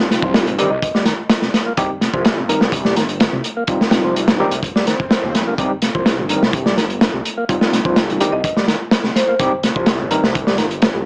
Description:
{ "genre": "breakbeat, breaks", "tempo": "126 BPM", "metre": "4/4", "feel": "straight", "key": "C minor", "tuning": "A4 = 440 Hz", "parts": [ { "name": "overdriven tine electric piano", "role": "stabs", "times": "0.0-10.2 s", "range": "G3 to Bb4", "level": "-24 LUFS", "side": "equal", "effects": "medium tremolo, analog delay" }, { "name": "percussive tonewheel organ", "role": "riff", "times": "0.1-11.0 s", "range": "C3 to Bb3", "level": "-26 LUFS", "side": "equal", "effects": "overdrive, stopped rotary speaker, tube saturation, analog delay" }, { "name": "crunchy breakbeat drum kit", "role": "drums", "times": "0.1-10.9 s", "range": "hi-hat, kick drum, snare drum", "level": "-19 LUFS", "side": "equal", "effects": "none" }, { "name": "phased detuned saw bass", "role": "bass", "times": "0.2-11.0 s", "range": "G1 to Eb2", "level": "-26 LUFS", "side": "equal", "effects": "phaser, tube saturation" }, { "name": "marimba with medium hard mallets", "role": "melody", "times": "0.7-0.9, 8.3-9.4 s", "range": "C5 to Eb5", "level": "-26 LUFS", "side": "equal", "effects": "AM radio sound, vintage 12-bit sampler grit, analog delay" }, { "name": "swell", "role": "sound effects", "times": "4.9-5.6 s", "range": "none", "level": "-28 LUFS", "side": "equal", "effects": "none" } ], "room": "light reverb", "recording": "dry, gritty hardware recording, small speaker sound", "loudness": "-17 LUFS", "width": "mono", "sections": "0.0-11.1 A section", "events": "swell 4.9-5.6", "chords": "0.0 Cm" }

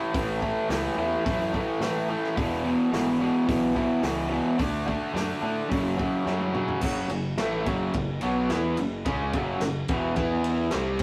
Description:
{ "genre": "garage rock duo or trio", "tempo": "108 BPM", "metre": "4/4", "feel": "straight", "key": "F# minor", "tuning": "A4 = 441 Hz", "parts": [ { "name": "raw garage guitar", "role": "riff", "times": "0.0-11.0 s", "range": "E2 to E4", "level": "-28 LUFS", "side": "equal", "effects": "overdrive" }, { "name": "fuzz fingered electric bass", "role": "bass", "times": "0.1-11.0 s", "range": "E1 to A2", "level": "-37 LUFS", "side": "equal", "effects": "overdrive" }, { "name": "vintage drum kit", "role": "drums", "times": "0.1-11.0 s", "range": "crash cymbal, hi-hat, kick drum, ride cymbal, snare drum, toms", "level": "-34 LUFS", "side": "equal", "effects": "none" } ], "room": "wet small room reverb, RT60 0.5 s", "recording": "rough rehearsal-room recording, warm saturation", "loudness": "-27 LUFS", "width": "mono", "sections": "0.0-6.8 A section; 6.8-11.0 B section", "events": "drum fill 6.3-6.8", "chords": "0.0 A5; 2.4 E; 4.6 D; 5.7 F#5; 6.8 F#m; 10.2 E5" }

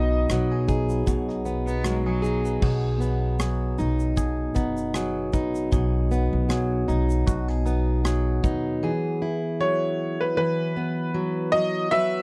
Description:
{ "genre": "acoustic pop", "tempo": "77 BPM", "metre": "4/4", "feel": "swing 55% on 16ths", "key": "unclear", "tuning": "A4 = 441 Hz", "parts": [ { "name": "bright upright piano", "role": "melody", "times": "0.0-0.6, 9.6-12.2 s", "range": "B4 to E5", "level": "-27 LUFS", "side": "equal", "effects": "none" }, { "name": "fingerpicked plugged-in steel-string acoustic guitar", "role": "accompaniment", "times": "0.0-12.2 s", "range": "B2 to B4", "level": "-28 LUFS", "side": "equal", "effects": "none" }, { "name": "direct-recorded clean electric guitar", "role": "arpeggios", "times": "0.0-9.4 s", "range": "F#3 to G#4", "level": "-38 LUFS", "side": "equal", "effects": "none" }, { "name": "upright bass", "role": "bass", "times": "0.0-8.8 s", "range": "F#1 to D#2", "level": "-28 LUFS", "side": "equal", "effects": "none" }, { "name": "modern studio drum kit", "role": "drums", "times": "0.3-8.6 s", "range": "crash cymbal, kick drum, rim click, shaker", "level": "-29 LUFS", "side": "equal", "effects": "none" }, { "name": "clear cello", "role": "second line", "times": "1.7-2.6 s", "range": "F#3 to B3", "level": "-34 LUFS", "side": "equal", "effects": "slapback echo" } ], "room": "little or no reverb", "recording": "dry, close 1970s-style studio recording", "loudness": "-25 LUFS", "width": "mono", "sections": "0.0-2.6 A section; 2.6-8.8 B section; 8.8-12.2 C section", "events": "none", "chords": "0.0 B6; 8.8 Eadd9; 11.5 Bsus4" }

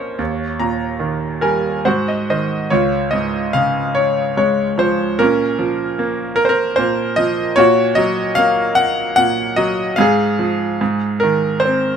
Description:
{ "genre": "classical, lyrical solo piano", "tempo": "74 BPM", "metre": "3/4", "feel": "uneven beats, rubato", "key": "Db major", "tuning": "A4 = 440 Hz", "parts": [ { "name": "bright concert grand piano", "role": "solo", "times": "0.0-12.0 s", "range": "Db2 to Bb5", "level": "-15 LUFS", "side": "equal", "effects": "none" } ], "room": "light reverb", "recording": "minimal, uncompressed stereo recording", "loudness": "-15 LUFS", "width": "side -7 dB against mid", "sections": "0.0-2.7 A section; 2.7-12.0 B section", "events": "grand piano fill 0.2-2.7", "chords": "0.2 Eb; 1.9 Ab7; 2.7 Db; 5.2 Bbm; 7.6 Ebm9/Bb; 10.0 Fm/Ab; 10.8 Ab" }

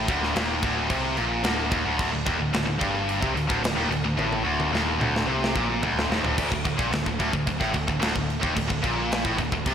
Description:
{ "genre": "heavy metal", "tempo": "110 BPM", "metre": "4/4", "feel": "straight", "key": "unclear", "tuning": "A4 = 440 Hz", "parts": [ { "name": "heavy high-gain guitar", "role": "riff", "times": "0.0-9.7 s", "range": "D2 to C3", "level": "-24 LUFS", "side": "equal", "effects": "distortion" }, { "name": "overdriven picked electric bass", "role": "bass", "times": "0.0-9.7 s", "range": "D1 to C2", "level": "-32 LUFS", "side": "equal", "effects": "none" }, { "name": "tight metal drum kit", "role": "drums", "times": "0.1-9.7 s", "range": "crash cymbal, kick drum, snare drum, toms", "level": "-28 LUFS", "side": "equal", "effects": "none" } ], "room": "moderate recital hall reverb, RT60 1.7 s, small room ambience", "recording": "big arena sound", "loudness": "-22 LUFS", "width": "side -8 dB against mid", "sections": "0.0-6.4 A section; 6.4-9.7 B section", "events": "drum fill 4.2-6.4", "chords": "0.0 D5" }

